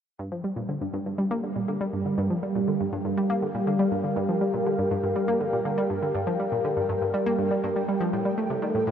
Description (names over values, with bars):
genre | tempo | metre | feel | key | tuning
ambient, sequencer-driven space music | 121 BPM | 4/4 | straight | G minor | A4 = 440 Hz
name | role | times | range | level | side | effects
phased analog pad | sustained chords | 0.6-8.9 s | G3 to F5 | -26 LUFS | equal | phaser, chorus
analog pluck | riff | 0.2-8.9 s | G2 to Bb3 | -28 LUFS | equal | chorus, tape echo
pulsing gated texture | texture | 0.2-8.9 s | G5 | -42 LUFS | right 2 dB | chorus, built-in reverb, shimmer reverb
room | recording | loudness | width
wet huge ambient reverb, RT60 7.4 s | dreamy mix soaked in reverb | -24 LUFS | side -8 dB against mid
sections
0.2-8.9 A section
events
fade-in on synth texture 0.2-8.9; filter sweep on synth arpeggio sound 0.2-8.9; filter sweep on analog synth pad 0.2-8.9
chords
0.2 Gm7; 8.1 Adim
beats
| 0.20 0.69 1.19 1.68 | 2.18 2.68 3.17 3.67 | 4.16 4.66 5.16 5.65 | 6.15 6.64 7.14 7.63 | 8.13 8.63